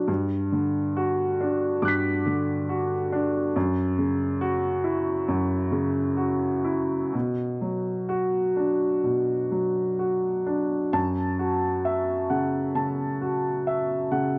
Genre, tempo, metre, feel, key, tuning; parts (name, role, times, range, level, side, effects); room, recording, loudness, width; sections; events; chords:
neoclassical minimalist piano; 61-70 BPM; 4/4; rubato; A4 = 440 Hz
warm concert grand piano; solo; 0.0-14.4 s; F#2 to B6; -26 LUFS; equal
small room ambience; dry, close 1970s-style studio recording; -26 LUFS; mono
0.0-10.9 A section; 10.9-14.4 B section
0.1 Gmaj7; 3.5 F#5; 7.1 Bm; 10.9 F#m7